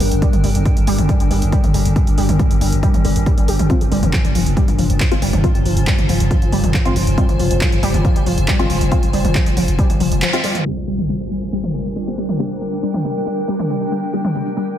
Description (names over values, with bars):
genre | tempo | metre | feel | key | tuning
driving peak-time techno | 138 BPM | 4/4 | straight | G phrygian | A4 = 440 Hz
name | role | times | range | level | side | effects
warbly dusty pluck | riff | 0.0-14.6 s | F3 to G4 | -22 LUFS | equal | ensemble chorus, sidechain pumping, analog delay
growling 808-style bass | bass | 0.0-10.2 s | F1 to G1 | -20 LUFS | equal | tube saturation, sidechain pumping, low-pass filter
metallic inharmonic drone | drone | 0.0-10.7 s | G2 to D3 | -24 LUFS | equal | chorus, built-in reverb, phaser, sidechain pumping
punchy analog drum machine | drums | 0.0-14.7 s | handclaps, hi-hat, shaker, toms | -23 LUFS | equal | overdrive, sidechain pumping on hats, sidechain pumping on toms, sidechain pumping on perc
granular cloud pad | texture | 0.0-14.8 s | D4 to Ab5 | -26 LUFS | left 1 dB | built-in reverb, sidechain pumping
electronic kick drum | drums | 0.2-9.9 s | none | -17 LUFS | equal | none
filtered dub chord stab | stabs | 3.7-14.2 s | Ab3 to G4 | -26 LUFS | left 2 dB | phaser, wide subtle chorus, sidechain pumping, analog delay
impact | sound effects | 10.7-12.4 s | none | -30 LUFS | equal | none
room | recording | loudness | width
moderate lush hall reverb, RT60 1.9 s, digital ambience | dreamy mix soaked in reverb, low-pass filter | -14 LUFS | side -11 dB against mid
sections
0.0-10.7 A section; 10.7-14.8 B section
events
band accent 10.2; impact 10.7-12.4; filter sweep 10.7-14.8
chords
0.0 Gm; 3.7 Fm; 10.7 Gm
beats
| 0.22 0.66 1.09 1.52 | 1.96 2.40 2.83 3.26 | 3.70 4.13 4.57 5.00 | 5.44 5.87 6.31 6.74 | 7.18 7.61 8.05 8.48 | 8.92 9.35 9.79 10.22 | 10.66 11.09 11.53 11.96 | 12.39 12.83 13.26 13.70 | 14.13 14.57